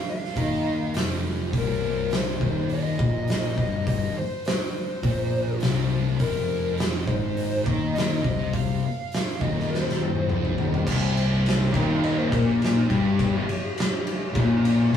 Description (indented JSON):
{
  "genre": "stoner and doom metal",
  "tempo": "103 BPM",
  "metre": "4/4",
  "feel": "straight",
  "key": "C minor",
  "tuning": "A4 = 438 Hz",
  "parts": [
    { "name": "fuzz lead guitar", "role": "melody", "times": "0.0-14.6 s", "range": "Eb4 to G5", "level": "-31 LUFS", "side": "left 3 dB", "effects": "distortion" },
    { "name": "oversized low-tuned drum kit", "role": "drums", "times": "0.2-15.0 s", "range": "crash cymbal, hi-hat, kick drum, ride cymbal, snare drum, toms", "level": "-27 LUFS", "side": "equal", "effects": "none" },
    { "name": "thick fuzz guitar", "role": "riff", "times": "0.4-15.0 s", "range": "C2 to Eb3", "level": "-29 LUFS", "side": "left 6 dB", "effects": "distortion" },
    { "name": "thick fuzz guitar", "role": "riff", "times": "0.4-15.0 s", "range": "C2 to Eb3", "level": "-29 LUFS", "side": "right 3 dB", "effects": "distortion" },
    { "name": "fuzz fingered electric bass", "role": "bass", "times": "0.4-15.0 s", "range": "C1 to Eb2", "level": "-31 LUFS", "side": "equal", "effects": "overdrive" },
    { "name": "fuzz guitar", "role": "riff", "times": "10.9-15.0 s", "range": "C2 to Bb2", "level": "-23 LUFS", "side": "left 2 dB", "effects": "distortion" }
  ],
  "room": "moderate stone room reverb, RT60 1.0 s",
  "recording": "rough rehearsal-room recording, studio ambience",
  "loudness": "-22 LUFS",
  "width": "side -8 dB against mid",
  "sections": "0.0-10.9 A section; 10.9-15.0 B section",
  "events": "drum fill 9.7-10.9",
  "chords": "0.0 F5; 1.5 Cm; 6.2 F5; 10.9 Cm",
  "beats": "0.37 0.95 | 1.54 2.12 2.71 3.29 | 3.87 4.45 5.04 5.62 | 6.20 6.78 7.36 7.95 | 8.53 9.11 9.69 10.27 | 10.85 11.43 12.01 12.60 | 13.18 13.76 14.34 14.92"
}